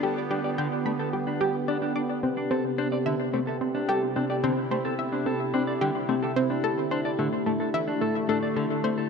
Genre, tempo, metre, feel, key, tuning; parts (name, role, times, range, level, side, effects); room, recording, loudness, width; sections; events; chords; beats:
ambient, sequencer-driven space music; 109 BPM; 4/4; straight; A4 = 440 Hz
sweeping resonant pad; sustained chords; 0.0-9.1 s; C3 to G4; -28 LUFS; right 1 dB; chorus
clean electric guitar; arpeggios; 0.0-9.1 s; D3 to D5; -31 LUFS; left 2 dB; auto-pan, tape echo
analog pluck; riff; 0.0-9.0 s; A3 to D6; -28 LUFS; equal; chorus, tape echo
wet plate reverb, RT60 3.2 s; dark, warm production; -24 LUFS; side -5 dB against mid
0.0-9.1 A section
0.0 G7; 2.2 Cmaj7; 6.6 A7sus4
| 0.03 0.58 1.13 1.68 | 2.23 2.78 3.33 3.88 | 4.44 4.99 5.54 6.09 | 6.64 7.19 7.74 8.29 | 8.84